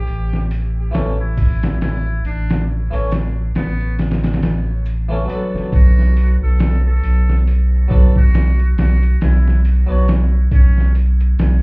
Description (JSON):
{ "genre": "trip hop", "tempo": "69 BPM", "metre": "4/4", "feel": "swing 58% on 16ths", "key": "B minor", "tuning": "A4 = 444 Hz", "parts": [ { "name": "trumpet with metal mute", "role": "melody", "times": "0.0-10.9 s", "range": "B3 to A4", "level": "-31 LUFS", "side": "equal", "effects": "tape echo" }, { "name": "harpsichord", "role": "accompaniment", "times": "0.0-10.1 s", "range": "E3 to C#5", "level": "-26 LUFS", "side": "equal", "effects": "tremolo, low-pass filter, tape echo" }, { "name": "round analog bass", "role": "bass", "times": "0.0-11.6 s", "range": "G1 to B1", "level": "-14 LUFS", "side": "equal", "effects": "none" }, { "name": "trip hop sampler-style drum kit", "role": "drums", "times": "0.1-11.6 s", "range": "hi-hat, kick drum, snare drum", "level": "-18 LUFS", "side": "equal", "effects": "overdrive" }, { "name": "maracas", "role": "percussion", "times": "1.4-10.3 s", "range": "none", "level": "-54 LUFS", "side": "left 2 dB", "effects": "none" } ], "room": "small room ambience", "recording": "heard muffled through a wall, club reverb, EQ, nothing above 10.5 kHz", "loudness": "-13 LUFS", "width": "side -32 dB against mid", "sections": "0.0-11.6 A section", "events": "kick drops out 4.0-5.7", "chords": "0.0 A; 5.7 Bm7" }